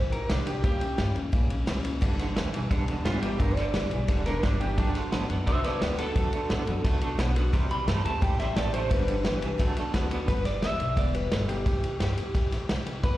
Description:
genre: rockabilly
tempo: 174 BPM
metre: 4/4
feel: straight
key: G major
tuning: A4 = 440 Hz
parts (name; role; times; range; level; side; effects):
- electric guitar through a small old amp; melody; 0.0-1.0, 3.0-13.2 s; D4 to B5; -32 LUFS; equal; plate reverb, slapback echo, analog delay
- picked steel-string acoustic guitar; accompaniment; 0.0-13.2 s; G2 to G4; -36 LUFS; left 4 dB; plate reverb, slapback echo
- upright bass; bass; 0.0-13.2 s; E1 to A2; -29 LUFS; equal; none
- vintage drum kit; drums; 0.1-13.1 s; kick drum, ride cymbal, snare drum; -29 LUFS; equal; none
- twangy electric guitar; riff; 2.0-10.3 s; G2 to B3; -33 LUFS; right 3 dB; tremolo, slapback echo
room: light reverb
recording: live gig heard through the venue's PA, recital hall reverb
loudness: -24 LUFS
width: side -15 dB against mid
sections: 0.0-10.3 A section; 10.3-13.2 B section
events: clean electric guitar solo 0.0-10.3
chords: 0.0 C6; 0.6 C#dim7; 2.0 G6; 4.8 D6; 7.5 C6; 8.9 G6; 9.6 D6; 10.3 G6; 11.7 C6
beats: 0.30 | 0.64 0.99 1.33 1.68 | 2.02 2.37 2.71 3.06 | 3.40 3.75 4.09 4.44 | 4.78 5.12 5.47 5.81 | 6.16 6.50 6.85 7.19 | 7.53 7.88 8.22 8.57 | 8.91 9.25 9.60 9.94 | 10.28 10.63 10.97 11.32 | 11.66 12.00 12.35 12.69 | 13.04

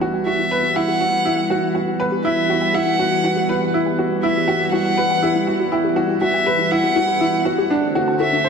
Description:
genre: piano and strings electronica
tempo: 121 BPM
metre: 4/4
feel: straight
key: E minor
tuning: A4 = 442 Hz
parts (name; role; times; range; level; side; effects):
- lush unison pad; sustained chords; 0.0-8.5 s; D3 to F#4; -23 LUFS; equal; chorus
- warbly dusty pluck; arpeggios; 0.0-8.4 s; D4 to A5; -27 LUFS; left 4 dB; none
- clear upright piano; riff; 0.0-8.5 s; D4 to C5; -20 LUFS; right 2 dB; ping-pong delay
- dark violin; melody; 0.3-8.5 s; E5 to F#5; -21 LUFS; left 1 dB; none
room: wet lush hall reverb, RT60 1.8 s, studio ambience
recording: none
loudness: -16 LUFS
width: side -6 dB against mid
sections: 0.0-8.5 A section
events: build-up 0.0-8.5; filter sweep on analog synth pad 0.0-8.5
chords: 0.0 Emadd9; 7.7 D7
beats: 0.27 0.76 1.26 | 1.75 2.25 2.75 3.24 | 3.74 4.23 4.73 5.23 | 5.72 6.22 6.71 7.21 | 7.71 8.20

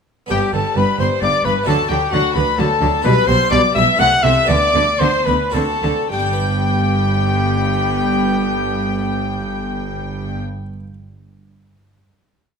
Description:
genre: classical, baroque-style concerto movement with solo episodes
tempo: 102-132 BPM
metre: 3/4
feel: straight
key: G major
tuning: A4 = 440 Hz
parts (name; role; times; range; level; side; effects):
- mellow trumpet; melody; 0.3-10.4 s; F#4 to F#5; -20 LUFS; left 2 dB; none
- rich chamber violin section; melody; 0.3-10.4 s; F#5 to F#6; -23 LUFS; left 5 dB; none
- warm chamber violin section; second line; 0.3-10.4 s; F#4 to G5; -22 LUFS; left 3 dB; none
- dark chamber viola section; accompaniment; 0.3-10.4 s; F#3 to C4; -25 LUFS; left 1 dB; none
- harpsichord; accompaniment; 0.3-10.9 s; G2 to G5; -27 LUFS; right 1 dB; none
- rich chamber double bass section; bass; 0.3-10.4 s; G1 to D2; -22 LUFS; right 3 dB; none
- warm chamber cello section; bass; 0.3-10.4 s; G2 to D3; -22 LUFS; right 2 dB; none
room: moderate recital hall reverb, RT60 1.6 s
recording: none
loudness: -14 LUFS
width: side -6 dB against mid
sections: 0.3-6.1 ritornello; 6.1-9.6 final chord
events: slowing down 2.4-6.1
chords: 0.3 G; 1.7 D; 3.0 G/B; 4.0 Am/C; 4.5 G/D; 5.5 D7; 6.1 G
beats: | 0.31 0.76 1.22 | 1.68 2.13 2.59 | 3.04 3.51 3.99 | 4.48 5.00 5.54 | 6.12 6.70 7.29 | 7.87 8.46 9.04

